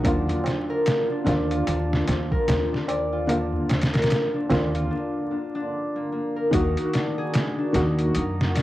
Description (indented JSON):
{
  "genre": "trip hop",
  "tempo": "74 BPM",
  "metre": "4/4",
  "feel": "swing 60% on 16ths",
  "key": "Eb harmonic minor",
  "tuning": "A4 = 440 Hz",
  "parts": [
    { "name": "felt-muted upright piano", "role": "accompaniment", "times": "0.0-8.6 s", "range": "D3 to Gb4", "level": "-27 LUFS", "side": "equal", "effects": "tremolo, cassette tape, tape echo" },
    { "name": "warbly tape-like pad", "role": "sustained chords", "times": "0.0-8.6 s", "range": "Eb3 to Gb5", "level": "-34 LUFS", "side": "right 2 dB", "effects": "chorus, built-in reverb, cassette tape" },
    { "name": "concert harp", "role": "arpeggios", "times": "0.0-8.6 s", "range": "Bb3 to Eb5", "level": "-27 LUFS", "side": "left 1 dB", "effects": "cassette tape, analog delay" },
    { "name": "upright bass", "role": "bass", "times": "0.0-8.6 s", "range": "Eb2 to Gb2", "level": "-27 LUFS", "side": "equal", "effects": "tube saturation" },
    { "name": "trip hop sampler-style drum kit", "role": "drums", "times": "0.0-8.6 s", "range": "hi-hat, kick drum, snare drum", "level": "-26 LUFS", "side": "equal", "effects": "overdrive" },
    { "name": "tabla", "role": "percussion", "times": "0.0-4.9 s", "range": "none", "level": "-35 LUFS", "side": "right 2 dB", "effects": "none" }
  ],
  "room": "light reverb, small room ambience",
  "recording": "home recording on cassette, vinyl crackle",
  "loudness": "-21 LUFS",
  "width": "side -15 dB against mid",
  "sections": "0.0-6.5 A section; 6.5-8.6 B section",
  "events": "break 4.9-6.5",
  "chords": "0.0 Bb/Eb; 6.5 Ebm",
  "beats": "| 0.04 0.85 1.67 2.48 | 3.29 4.10 4.91 5.72 | 6.53 7.34 8.15"
}